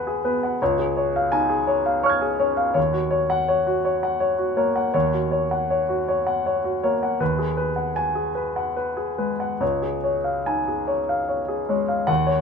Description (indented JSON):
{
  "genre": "neoclassical minimalist piano",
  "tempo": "68-85 BPM",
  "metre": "3/4",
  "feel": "rubato",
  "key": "unclear",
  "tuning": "A4 = 441 Hz",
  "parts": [
    { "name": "warm grand piano", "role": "solo", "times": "0.0-12.4 s", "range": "Db2 to Ab6", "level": "-20 LUFS", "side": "left 1 dB", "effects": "none" }
  ],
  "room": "light reverb",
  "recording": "minimal, uncompressed stereo recording",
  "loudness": "-20 LUFS",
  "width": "side -6 dB against mid",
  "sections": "0.0-12.1 A section",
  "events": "none",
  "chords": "0.0 Abm7/Eb; 0.6 Db; 2.8 Ebm7; 7.2 Abm7/Eb; 9.6 Db"
}